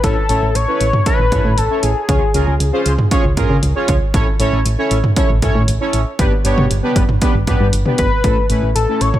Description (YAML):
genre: synth-pop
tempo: 117 BPM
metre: 4/4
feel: straight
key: unclear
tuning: A4 = 440 Hz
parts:
  - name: octave-doubled lead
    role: melody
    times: 0.0-2.9, 8.0-9.2 s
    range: G#4 to C#5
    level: -18 LUFS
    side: left 4 dB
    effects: chorus, digital delay
  - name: analog synth brass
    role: accompaniment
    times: 0.0-9.1 s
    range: A3 to C#5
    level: -19 LUFS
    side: right 1 dB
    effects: chorus
  - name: solid FM bass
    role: bass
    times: 0.0-9.1 s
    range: G1 to C#3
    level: -17 LUFS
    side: equal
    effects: none
  - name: punchy analog drum machine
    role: drums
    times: 0.0-9.2 s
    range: hi-hat, kick drum, toms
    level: -17 LUFS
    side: equal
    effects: gated reverb
room: light reverb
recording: none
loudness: -13 LUFS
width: side -13 dB against mid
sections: 0.0-9.2 A section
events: none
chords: 0.0 A; 2.1 C#; 4.1 A; 6.2 G; 8.2 A